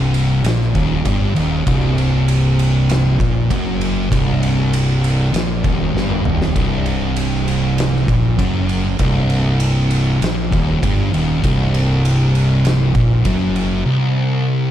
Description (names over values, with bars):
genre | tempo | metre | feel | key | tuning
stoner and doom metal | 98 BPM | 4/4 | straight | C minor | A4 = 439 Hz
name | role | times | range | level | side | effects
thick fuzz guitar | riff | 0.0-14.7 s | C2 to Bb2 | -19 LUFS | left 5 dB | distortion
thick fuzz guitar | riff | 0.0-14.7 s | C2 to Bb2 | -18 LUFS | right 5 dB | distortion
fuzz fingered electric bass | bass | 0.0-13.8 s | C1 to Bb1 | -22 LUFS | equal | overdrive
oversized low-tuned drum kit | drums | 0.1-13.7 s | kick drum, ride cymbal, snare drum, toms | -22 LUFS | equal | none
room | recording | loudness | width
studio reverb | dark, warm production | -14 LUFS | side -11 dB against mid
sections
0.0-14.7 A section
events
drum fill 5.9-6.6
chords
0.0 Cm